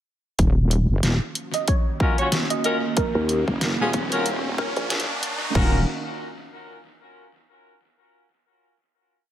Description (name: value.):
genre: glitch hop.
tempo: 93 BPM.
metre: 4/4.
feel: swing 57% on 16ths.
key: Eb minor.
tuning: A4 = 440 Hz.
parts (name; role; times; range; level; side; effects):
warm analog pad; sustained chords; 0.4-5.9 s; Eb3 to Gb4; -32 LUFS; right 2 dB; chorus, sidechain pumping.
wobble bass; bass; 0.4-5.9 s; Eb1 to Gb1; -22 LUFS; equal; chorus, tube saturation.
dubstep drum kit; drums; 0.4-5.7 s; crash cymbal, hi-hat, snare drum; -27 LUFS; equal; overdrive, tape echo.
electronic kick drum; drums; 0.4-5.7 s; none; -22 LUFS; equal; overdrive.
riser; sound effects; 1.6-5.5 s; none; -32 LUFS; right 2 dB; none.
woody wave-folded pluck; melody; 1.5-4.9 s; Bb4 to Eb5; -30 LUFS; right 4 dB; analog chorus, tape echo.
bright horn section; stabs; 2.0-5.8 s; Db4 to Db5; -27 LUFS; left 2 dB; sidechain pumping, low-pass filter, tape echo.
vowel-sweep wobble bass; bass; 3.2-5.1 s; Bb1 to Eb2; -23 LUFS; left 1 dB; chorus.
room: light reverb.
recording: echo-heavy mix, high-pass filter.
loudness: -20 LUFS.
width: side -12 dB against mid.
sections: 0.4-5.6 build; 5.6-8.1 final chord.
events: build-up 0.4-5.6; filter sweep on analog synth pad 0.4-5.6; filter sweep 0.4-5.6; riser 1.6-5.6.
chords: 0.4 Ebm7.